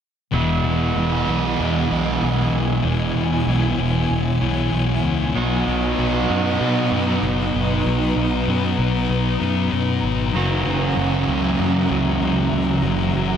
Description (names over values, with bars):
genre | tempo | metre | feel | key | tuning
rock | 96 BPM | 4/4 | straight | E lydian | A4 = 440 Hz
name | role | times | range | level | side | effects
granular cloud pad | sustained chords | 1.3-13.4 s | D#4 to A#5 | -29 LUFS | equal | built-in reverb
biting overdriven guitar | riff | 0.3-13.4 s | E2 to F#4 | -23 LUFS | right 8 dB | reverse reverb
thick fuzz guitar | riff | 0.3-13.4 s | E2 to B3 | -22 LUFS | left 7 dB | distortion, wide subtle chorus
picked electric bass | bass | 0.3-13.4 s | E1 to B2 | -24 LUFS | equal | none
room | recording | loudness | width
moderate lush hall reverb, RT60 2.9 s | none | -18 LUFS | side -8 dB against mid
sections
0.3-13.4 A section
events
none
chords
0.3 Emaj7; 5.3 Bmaj7; 10.3 F#7